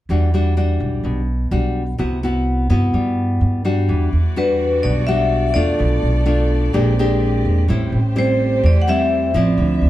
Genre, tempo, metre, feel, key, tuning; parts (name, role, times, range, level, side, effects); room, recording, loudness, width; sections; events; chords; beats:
bossa nova; 126 BPM; 4/4; straight; E minor; A4 = 441 Hz
nylon-string guitar; accompaniment; 0.1-9.9 s; A2 to G4; -20 LUFS; left 1 dB
upright bass; bass; 0.1-9.9 s; A1 to G2; -18 LUFS; right 1 dB
muted chamber string section; sustained chords; 3.9-9.9 s; G3 to E5; -30 LUFS; right 1 dB
vibraphone with medium hard mallets; melody; 4.4-9.9 s; B4 to F#5; -20 LUFS; left 1 dB
moderate studio reverb, RT60 0.5 s; heard from further back in the room; -15 LUFS; side -14 dB against mid
0.1-3.9 A section; 3.9-9.9 B section
0.1 Em9; 2.0 Cmaj9#11; 3.9 Em9; 5.8 Bm7b5; 6.7 A#13; 7.7 Am7
| 0.09 0.56 1.03 1.51 | 1.98 2.46 2.93 3.41 | 3.88 4.36 4.83 5.31 | 5.78 6.25 6.73 7.21 | 7.68 8.15 8.63 9.11 | 9.58